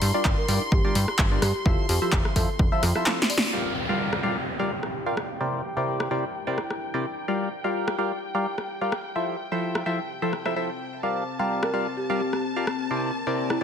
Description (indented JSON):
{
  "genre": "piano house",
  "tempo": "128 BPM",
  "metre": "4/4",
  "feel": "swing 54% on 16ths",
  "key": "G dorian",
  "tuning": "A4 = 440 Hz",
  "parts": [
    { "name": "rich chamber violin section", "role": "sustained chords", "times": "0.0-13.6 s", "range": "G5 to C6", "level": "-35 LUFS", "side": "left 1 dB", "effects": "sidechain pumping, low-pass filter" },
    { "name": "plucky analog bass", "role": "bass", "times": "0.0-2.9 s", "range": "F1 to G2", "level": "-25 LUFS", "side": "equal", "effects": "sidechain pumping" },
    { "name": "punchy analog drum machine", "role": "drums", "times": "0.0-13.6 s", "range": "handclaps, hi-hat, rim click, snare drum", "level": "-28 LUFS", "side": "equal", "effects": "overdrive" },
    { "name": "deep dark ambient pad", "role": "texture", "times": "0.0-13.6 s", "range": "C4 to Bb5", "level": "-36 LUFS", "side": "left 3 dB", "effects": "chorus, built-in reverb, sidechain pumping" },
    { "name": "percussive organ stab", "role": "riff", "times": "0.1-13.6 s", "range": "C3 to F5", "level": "-27 LUFS", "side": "equal", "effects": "chorus, phaser, sidechain pumping, dub echo" },
    { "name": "electronic kick drum", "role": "drums", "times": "0.3-2.7 s", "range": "none", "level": "-24 LUFS", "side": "equal", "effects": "overdrive" },
    { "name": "buzzing marimba with soft mallets", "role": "melody", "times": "0.4-3.5, 11.6-13.6 s", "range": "E4 to D5", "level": "-34 LUFS", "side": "right 2 dB", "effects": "dub echo" },
    { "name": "downlifter", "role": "sound effects", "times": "3.5-7.3 s", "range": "none", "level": "-32 LUFS", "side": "equal", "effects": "none" }
  ],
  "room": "light reverb",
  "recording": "none",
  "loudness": "-23 LUFS",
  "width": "side -8 dB against mid",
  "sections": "0.0-3.5 A section; 3.5-13.6 B section",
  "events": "drum fill 3.1-3.5; band accent 3.4; filter sweep on violin section 3.5-13.6",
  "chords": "0.0 Gm7; 1.7 Fmaj7; 3.5 Gm7; 5.2 C9; 7.3 Gm7; 9.2 Fmaj7; 11.0 Gm7; 12.7 C9"
}